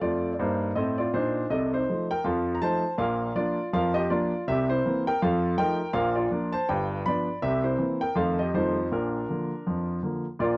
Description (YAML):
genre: jazz, stride piano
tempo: 162 BPM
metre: 4/4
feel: swing 59% on 8ths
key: Bb major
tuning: A4 = 440 Hz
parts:
  - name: clear grand piano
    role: solo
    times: 0.0-10.6 s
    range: G1 to B5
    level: -24 LUFS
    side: equal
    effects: none
room: light reverb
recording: dry, close 1970s-style studio recording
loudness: -24 LUFS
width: side -25 dB against mid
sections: 0.0-10.4 A section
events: none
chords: 0.0 F7; 1.5 F7/C; 2.2 F7; 3.0 Bb; 4.5 C7; 5.2 F7; 6.0 Bb; 6.7 G7; 7.4 C7; 8.2 F7; 8.9 Bb